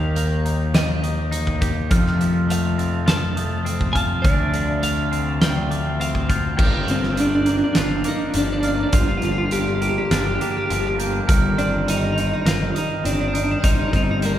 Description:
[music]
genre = post-rock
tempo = 102 BPM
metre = 4/4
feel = straight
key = G minor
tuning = A4 = 439 Hz
[part]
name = twelve-string electric guitar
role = melody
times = 0.0-14.4 s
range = Bb3 to A5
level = -24 LUFS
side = equal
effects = none
[part]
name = pedal steel guitar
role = sustained chords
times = 0.0-14.4 s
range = C3 to G5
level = -33 LUFS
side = left 1 dB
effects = none
[part]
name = glockenspiel with soft plastic mallets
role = arpeggios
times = 0.0-14.4 s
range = D6 to A6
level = -30 LUFS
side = right 6 dB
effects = none
[part]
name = twangy electric guitar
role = arpeggios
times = 0.0-14.4 s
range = G2 to Bb4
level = -27 LUFS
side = left 2 dB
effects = none
[part]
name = fuzz picked electric bass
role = bass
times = 0.0-14.4 s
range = G1 to F2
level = -23 LUFS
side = equal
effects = overdrive
[part]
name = huge arena drum kit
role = drums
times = 0.2-14.4 s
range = crash cymbal, hi-hat, kick drum, snare drum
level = -23 LUFS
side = equal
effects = none
[sound]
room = wet cathedral reverb, RT60 6.1 s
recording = recorded in a church or concert hall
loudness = -18 LUFS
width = side -11 dB against mid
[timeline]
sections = 0.0-6.6 A section; 6.6-14.4 B section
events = none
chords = 0.0 Eb; 1.9 F; 4.2 Dm7; 6.6 Gm7; 11.3 Cm7/G

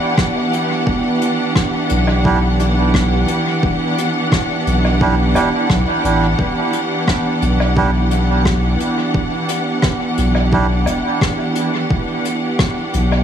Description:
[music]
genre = ambient dub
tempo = 87 BPM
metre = 4/4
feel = straight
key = E minor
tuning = A4 = 436 Hz
[part]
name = clear symphonic string section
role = sustained chords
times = 0.0-13.2 s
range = E3 to F#5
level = -18 LUFS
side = right 1 dB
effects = vintage 12-bit sampler grit
[part]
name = electronic kick drum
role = drums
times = 0.2-12.7 s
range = none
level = -18 LUFS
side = equal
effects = overdrive
[part]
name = soft brush drum kit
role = drums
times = 0.2-13.2 s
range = hi-hat, rim click, woodblock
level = -24 LUFS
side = left 1 dB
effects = dub echo
[part]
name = soft dub sub bass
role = bass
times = 0.9-13.2 s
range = E1 to B1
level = -16 LUFS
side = equal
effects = none
[part]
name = melodica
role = stabs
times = 2.3-10.7 s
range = D4 to G4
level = -23 LUFS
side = right 4 dB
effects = dub echo
[sound]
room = light reverb, small room reverb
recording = studio reverb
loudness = -14 LUFS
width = side -9 dB against mid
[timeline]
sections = 0.0-13.2 A section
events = none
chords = 0.0 Em7

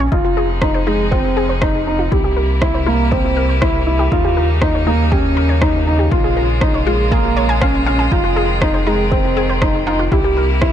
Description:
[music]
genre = piano and strings electronica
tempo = 120 BPM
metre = 4/4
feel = straight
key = F minor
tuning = A4 = 440 Hz
[part]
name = analog pluck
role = arpeggios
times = 0.0-10.4 s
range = Eb4 to Ab5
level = -23 LUFS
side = left 3 dB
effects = chorus, sidechain pumping, ping-pong delay
[part]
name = felt-muted upright piano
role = riff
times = 0.0-10.7 s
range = Ab3 to G4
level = -18 LUFS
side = right 1 dB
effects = ping-pong delay
[part]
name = round analog bass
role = bass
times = 0.0-10.7 s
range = F1 to Eb2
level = -19 LUFS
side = equal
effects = sidechain pumping
[part]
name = clear string quartet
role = sustained chords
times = 0.1-10.7 s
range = C3 to F4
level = -23 LUFS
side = equal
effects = sidechain pumping
[part]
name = electronic kick drum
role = drums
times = 0.1-10.7 s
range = none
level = -19 LUFS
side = equal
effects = overdrive
[part]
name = electronic rim click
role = drums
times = 0.6-10.7 s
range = none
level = -23 LUFS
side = equal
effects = overdrive
[sound]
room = light reverb, small room ambience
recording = dark, warm production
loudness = -13 LUFS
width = side -10 dB against mid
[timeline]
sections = 0.0-10.7 A section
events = none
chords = 0.1 Fm7; 2.1 C7; 4.1 Eb7; 6.1 Bbm7; 8.1 Fm7; 10.1 C7

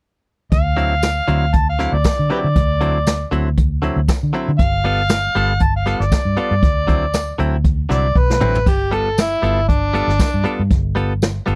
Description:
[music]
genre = straight-eighth soul blues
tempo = 118 BPM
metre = 4/4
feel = swing 55% on 16ths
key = unclear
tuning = A4 = 441 Hz
[part]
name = overdriven harmonica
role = melody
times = 0.5-10.7 s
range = D4 to A5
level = -22 LUFS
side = equal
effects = none
[part]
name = vintage muted fingered electric bass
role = bass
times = 0.5-11.6 s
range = G1 to D3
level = -22 LUFS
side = equal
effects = none
[part]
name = jazz brush drum kit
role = drums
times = 0.5-11.6 s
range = crash cymbal, hi-hat, kick drum, snare drum, tambourine, toms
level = -20 LUFS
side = equal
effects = none
[part]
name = direct-recorded clean electric guitar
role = stabs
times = 0.8-11.6 s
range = D3 to A4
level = -24 LUFS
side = equal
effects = subtle chorus
[sound]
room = little or no reverb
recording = dry, close 1970s-style studio recording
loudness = -17 LUFS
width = mono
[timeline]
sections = 0.5-11.6 A section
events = drum fill 8.2-8.7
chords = 0.5 D9; 4.6 G9; 6.6 D9; 8.7 G9

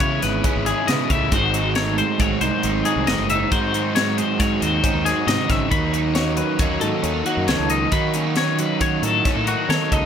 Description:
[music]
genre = math rock and midwest emo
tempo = 136 BPM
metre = 5/4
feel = straight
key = unclear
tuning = A4 = 441 Hz
[part]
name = twelve-string electric guitar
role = accompaniment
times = 0.0-10.1 s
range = G#2 to A4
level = -25 LUFS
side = right 9 dB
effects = analog chorus
[part]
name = twangy electric guitar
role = arpeggios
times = 0.0-10.1 s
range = F#4 to B5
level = -23 LUFS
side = left 7 dB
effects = wide subtle chorus
[part]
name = overdriven electric guitar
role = riff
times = 0.0-10.1 s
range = G#2 to E4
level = -24 LUFS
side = left 2 dB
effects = none
[part]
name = fuzz fingered electric bass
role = bass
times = 0.0-10.1 s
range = F#1 to D#3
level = -25 LUFS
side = equal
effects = overdrive
[part]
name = crisp fusion drum kit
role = drums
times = 0.0-10.0 s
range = hi-hat, kick drum, snare drum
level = -24 LUFS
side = equal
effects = none
[sound]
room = little or no reverb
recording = none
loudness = -18 LUFS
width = side -8 dB against mid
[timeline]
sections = 0.0-10.1 A section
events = none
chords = 0.0 C#m9; 1.3 G#7b9; 5.7 D#m7b5

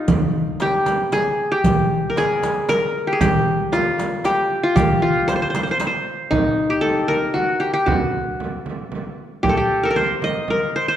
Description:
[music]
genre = Arabic maqam ensemble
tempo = 116 BPM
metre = 3/4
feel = straight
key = C maqam nikriz from 6.3 s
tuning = A4 = 441 Hz
[part]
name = qanun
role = melody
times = 0.0-11.0 s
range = Eb4 to Eb5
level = -19 LUFS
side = left 1 dB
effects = none
[part]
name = darbuka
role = percussion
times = 0.1-6.1 s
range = none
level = -25 LUFS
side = equal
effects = none
[part]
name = frame drum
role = percussion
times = 0.1-10.6 s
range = none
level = -24 LUFS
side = right 3 dB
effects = none
[part]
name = riq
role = percussion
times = 0.1-5.9 s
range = none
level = -30 LUFS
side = left 3 dB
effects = none
[sound]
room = wet scoring stage reverb, RT60 1.6 s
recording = dark, warm production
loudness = -17 LUFS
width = side -10 dB against mid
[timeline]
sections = 0.0-6.3 A section; 6.3-11.0 B section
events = none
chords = none

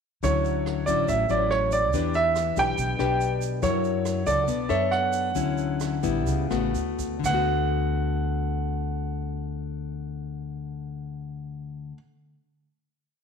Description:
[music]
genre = bossa nova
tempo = 120-142 BPM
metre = 4/4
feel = straight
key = D major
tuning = A4 = 441 Hz
[part]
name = clear grand piano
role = melody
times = 0.2-11.9 s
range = C#5 to G5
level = -26 LUFS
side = right 4 dB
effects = none
[part]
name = nylon-string guitar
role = accompaniment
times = 0.2-12.1 s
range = A2 to C#5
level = -27 LUFS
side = left 8 dB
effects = none
[part]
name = upright bass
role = bass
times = 0.2-11.9 s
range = A1 to F#2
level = -30 LUFS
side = right 2 dB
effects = none
[part]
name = jazz brush drum kit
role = drums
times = 0.2-7.4 s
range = crash cymbal, hi-hat, kick drum, rim click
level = -39 LUFS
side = right 7 dB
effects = none
[part]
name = egg shaker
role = percussion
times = 0.2-7.4 s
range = none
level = -42 LUFS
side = right 17 dB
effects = none
[sound]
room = moderate echo chamber reverb, RT60 1.4 s, studio reverb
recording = 1960s-style stereo with parts hard left and right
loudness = -23 LUFS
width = side -6 dB against mid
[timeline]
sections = 0.2-7.2 A section; 7.2-11.2 final chord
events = slowing down 3.6-7.2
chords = 0.2 Dmaj9; 1.9 Em7; 3.6 F#7; 4.5 Bm9; 5.4 Dmaj9; 6.3 A9/C#; 6.7 D6

